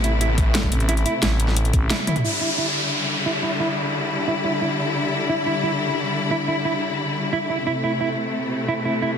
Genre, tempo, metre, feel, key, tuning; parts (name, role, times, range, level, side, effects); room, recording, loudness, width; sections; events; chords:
dark technical drum and bass; 177 BPM; 4/4; straight; E minor; A4 = 440 Hz
clear symphonic string section; sustained chords; 0.0-9.2 s; C3 to E4; -24 LUFS; left 2 dB; sidechain pumping
mellow electric guitar; arpeggios; 0.0-9.1 s; E4; -26 LUFS; right 3 dB; sidechain pumping, low-pass filter, ping-pong delay
wide detuned saw bass; bass; 0.0-0.7 s; A1; -21 LUFS; equal; chorus
dubstep drum kit; drums; 0.0-2.2 s; hi-hat, snare drum, toms; -24 LUFS; equal
electronic kick drum; drums; 0.4-1.8 s; -21 LUFS; equal; overdrive
growling FM bass; bass; 0.7-1.9 s; A1; -20 LUFS; equal
downlifter; sound effects; 2.2-5.0 s; -25 LUFS; equal
moderate digital room reverb, RT60 1.1 s; dense, heavily limited modern master; -19 LUFS; side -7 dB against mid
0.0-2.2 A section; 2.2-9.2 B section
band accent 1.9; drum fill 2.0; filter sweep on clean electric guitar 2.2-9.2
0.0 Am; 2.2 Em7; 7.7 Am